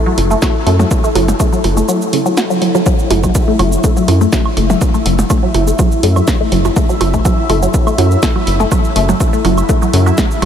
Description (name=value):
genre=minimal techno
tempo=123 BPM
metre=4/4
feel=swing 53% on 16ths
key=F# minor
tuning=A4 = 440 Hz
part: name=bubbling stepped-filter texture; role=texture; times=0.0-10.5 s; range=E4 to E5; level=-20 LUFS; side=left 2 dB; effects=chorus, built-in reverb, sidechain pumping
part: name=resonant blip pluck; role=riff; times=0.1-10.4 s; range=C#3 to F#4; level=-16 LUFS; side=left 1 dB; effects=chorus, phaser, sidechain pumping, ping-pong delay
part: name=rubbery square bass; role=bass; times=0.2-10.5 s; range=F#1 to F#2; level=-14 LUFS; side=equal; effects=sidechain pumping
part: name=punchy analog drum machine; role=drums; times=0.2-10.5 s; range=hi-hat, shaker, snare drum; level=-22 LUFS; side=right 1 dB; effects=none
part: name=percussion blips and woodblock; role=percussion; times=0.2-10.5 s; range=none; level=-21 LUFS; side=right 5 dB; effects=overdrive, ping-pong delay
part: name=electronic kick drum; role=drums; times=0.4-10.3 s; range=none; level=-14 LUFS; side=equal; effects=none
room=moderate huge ambient reverb, RT60 7.3 s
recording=dreamy mix soaked in reverb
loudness=-10 LUFS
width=side -8 dB against mid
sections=0.0-2.9 A section; 2.9-10.5 B section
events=drop 2.9-10.5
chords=0.0 F#m7; 2.9 F#7(no3)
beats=0.42 | 0.91 1.40 1.89 2.37 | 2.86 3.35 3.84 4.33 | 4.81 5.30 5.79 6.28 | 6.76 7.25 7.74 8.23 | 8.71 9.20 9.69 10.18